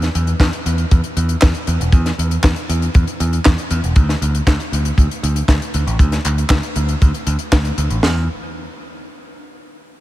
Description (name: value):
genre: italo disco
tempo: 118 BPM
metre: 4/4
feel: straight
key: unclear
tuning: A4 = 440 Hz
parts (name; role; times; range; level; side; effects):
- picked electric bass; bass; 0.0-8.3 s; E1 to E2; -18 LUFS; equal; diffuse ambient delay
- tight funk drum kit; drums; 0.0-8.0 s; handclaps, hi-hat, snare drum; -22 LUFS; left 1 dB; none
- tight funk drum kit; drums; 0.4-8.1 s; kick drum, snare drum; -12 LUFS; equal; none
room: light reverb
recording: none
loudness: -14 LUFS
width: side -15 dB against mid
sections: 0.0-8.0 A section; 8.0-10.0 B section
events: none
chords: none